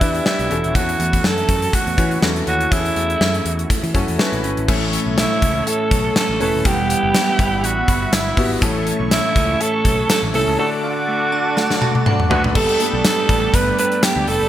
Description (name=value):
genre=1980s-style pop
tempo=122 BPM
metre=4/4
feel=swing 55% on 16ths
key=unclear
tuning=A4 = 440 Hz
part: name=growling alto saxophone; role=melody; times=0.0-14.5 s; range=E4 to B4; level=-20 LUFS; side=right 2 dB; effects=none
part: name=clear baby grand piano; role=accompaniment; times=0.0-14.5 s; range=G2 to F#5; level=-24 LUFS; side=left 3 dB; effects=analog chorus
part: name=clean electric guitar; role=riff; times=0.0-14.5 s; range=E3 to A4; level=-26 LUFS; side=right 6 dB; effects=ensemble chorus, digital delay
part: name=picked electric bass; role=bass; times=0.0-14.5 s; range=D#1 to E3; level=-24 LUFS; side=equal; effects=none
part: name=gated 80s drum kit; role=drums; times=0.0-14.4 s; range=crash cymbal, hi-hat, kick drum, snare drum, tambourine, toms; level=-19 LUFS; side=equal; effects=none
part: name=brassy analog pad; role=sustained chords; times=4.7-14.5 s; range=G3 to D6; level=-27 LUFS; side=equal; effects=chorus
part: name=glassy synth bell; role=second line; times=11.3-12.5 s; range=F#5 to A5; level=-26 LUFS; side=right 1 dB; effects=chorus, phaser, digital delay
room=light reverb, studio reverb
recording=bright 1980s-style digital production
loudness=-15 LUFS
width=side -12 dB against mid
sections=0.0-4.7 A section; 4.7-12.6 B section; 12.6-14.5 C section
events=drum fill 11.6-12.6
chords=0.0 Em7; 0.5 F#m7; 4.7 A; 6.7 Emadd9; 8.6 A; 10.6 D; 12.6 Gadd9